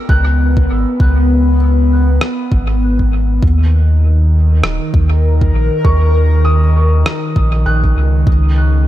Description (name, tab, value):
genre	ambient dub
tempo	99 BPM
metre	4/4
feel	swing 58% on 16ths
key	unclear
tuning	A4 = 441 Hz
part	airy breathy pad	sustained chords	0.0-8.9 s	D#3 to A#4	-18 LUFS	left 1 dB	chorus
part	felt-muted upright piano	arpeggios	0.0-8.9 s	A#4 to F#6	-24 LUFS	right 2 dB	dub echo
part	warm sub bass	bass	0.1-8.9 s	D#1 to D#2	-11 LUFS	equal	none
part	electronic kick drum	drums	0.1-8.4 s	none	-14 LUFS	equal	overdrive
part	electronic rim click	drums	2.2-7.2 s	none	-22 LUFS	equal	dub echo
room	little or no reverb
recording	none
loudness	-10 LUFS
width	side -13 dB against mid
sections	0.0-8.9 A section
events	none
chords	0.0 C#m7; 3.4 D#m7; 8.3 C#sus4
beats	0.40 | 1.00 1.61 2.21 2.82 | 3.43 4.03 4.64 5.24 | 5.85 6.46 7.06 7.67 | 8.27